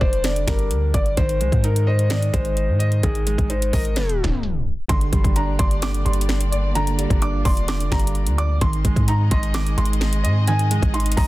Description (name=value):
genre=hip hop, trap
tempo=129 BPM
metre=4/4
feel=half-time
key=G phrygian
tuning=A4 = 439 Hz
part: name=felt-muted upright piano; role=melody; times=0.0-11.3 s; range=Ab4 to D6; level=-27 LUFS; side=left 2 dB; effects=tape echo
part: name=warm concert grand piano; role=accompaniment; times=0.0-11.3 s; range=D3 to Eb5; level=-27 LUFS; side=right 4 dB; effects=none
part: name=warm 808-style bass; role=bass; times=0.0-11.3 s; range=F1 to Ab2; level=-21 LUFS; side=equal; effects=none
part: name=trap drum kit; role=drums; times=0.0-11.3 s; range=finger snaps, hi-hat, kick drum, snare drum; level=-22 LUFS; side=equal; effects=soft clipping on snare
part: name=dark studio string section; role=sustained chords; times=4.9-11.3 s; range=Bb3 to Eb5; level=-33 LUFS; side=left 2 dB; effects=none
room=little or no reverb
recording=dense, heavily limited modern master, tape stop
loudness=-18 LUFS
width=side -17 dB against mid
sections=0.0-4.9 A section; 4.9-11.3 B section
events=tape stop 4.0-4.9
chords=0.0 Gm; 1.2 Ab; 4.9 Gm; 8.6 Ab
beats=0.24 0.71 | 1.17 1.64 2.10 2.57 | 3.03 3.50 3.96 4.43 | 4.89 5.36 5.83 6.29 | 6.75 7.22 7.68 8.15 | 8.62 9.08 9.55 10.01 | 10.48 10.94